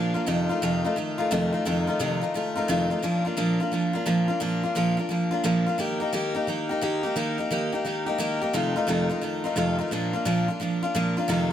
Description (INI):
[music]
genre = rock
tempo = 174 BPM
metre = 4/4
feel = swing 65% on 8ths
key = Bb major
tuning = A4 = 436 Hz
[part]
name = picked steel-string acoustic guitar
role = solo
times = 0.0-11.5 s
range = F2 to G4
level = -23 LUFS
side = equal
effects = tape echo
[sound]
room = moderate small room ambience, RT60 0.5 s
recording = none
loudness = -23 LUFS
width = side -10 dB against mid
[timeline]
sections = 0.0-4.4 A section; 4.4-11.5 B section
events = none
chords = 0.3 F7; 3.0 Bb; 5.8 Eb; 8.5 F7; 9.9 Bb